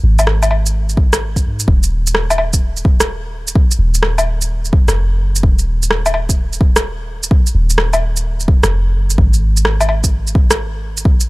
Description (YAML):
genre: future garage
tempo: 128 BPM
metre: 4/4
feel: swing 66% on 16ths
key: Eb minor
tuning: A4 = 441 Hz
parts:
  - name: soft 808-style bass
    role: bass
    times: 0.0-11.3 s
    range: Eb1 to Ab2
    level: -16 LUFS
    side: equal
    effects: sidechain pumping
  - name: electronic shaker, woodblock and rim click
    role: drums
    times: 0.2-11.3 s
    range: none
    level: -16 LUFS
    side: equal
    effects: none
  - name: electronic kick drum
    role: drums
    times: 1.0-11.2 s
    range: none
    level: -12 LUFS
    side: equal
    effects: none
room: little or no reverb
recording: dry, gritty hardware recording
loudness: -12 LUFS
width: side -22 dB against mid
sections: 0.0-1.7 A section; 1.7-11.3 B section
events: none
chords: none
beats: 0.27 0.74 1.21 | 1.68 2.15 2.62 3.09 | 3.56 4.02 4.49 4.96 | 5.43 5.90 6.37 6.84 | 7.31 7.77 8.24 8.71 | 9.18 9.65 10.12 10.59 | 11.06